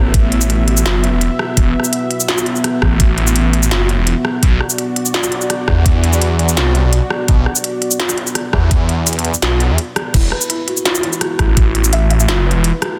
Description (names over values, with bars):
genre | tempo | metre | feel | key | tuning
half-time drum and bass | 168 BPM | 4/4 | half-time | unclear | A4 = 440 Hz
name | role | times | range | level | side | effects
dark analog pad | sustained chords | 0.0-10.1 s | B3 to E5 | -23 LUFS | equal | chorus, sidechain pumping
phased detuned saw bass | bass | 0.0-12.7 s | E1 to E2 | -17 LUFS | equal | phaser
electronic kick drum | drums | 0.1-11.6 s | none | -16 LUFS | equal | none
industrial drum kit | drums | 0.1-12.9 s | crash cymbal, hi-hat, rim click, shaker, snare drum | -21 LUFS | equal | none
felt-muted upright piano | arpeggios | 10.1-13.0 s | E3 to E5 | -24 LUFS | equal | digital delay
room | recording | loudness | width
little or no reverb | dense, heavily limited modern master | -15 LUFS | mono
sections
0.0-10.1 A section; 10.1-13.0 A section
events
drop 0.0-10.1, 10.1-13.0; break 9.8-10.1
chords
0.0 Esus2; 4.4 Bm; 10.1 Esus2